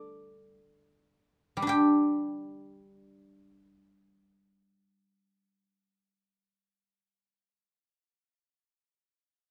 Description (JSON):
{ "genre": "chinese traditional, Chinese solo plucked strings", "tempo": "free time", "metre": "none", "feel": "none", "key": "unclear", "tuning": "A4 = 440 Hz", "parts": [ { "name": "guzheng", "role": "solo", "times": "0.0-7.6 s", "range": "G3 to G5", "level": "-28 LUFS", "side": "equal", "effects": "none" } ], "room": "light reverb", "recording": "band playing live in one room", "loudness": "-27 LUFS", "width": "mono", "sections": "0.0-1.7 A section; 1.7-6.1 B section", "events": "slowing down 0.0-1.7", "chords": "none" }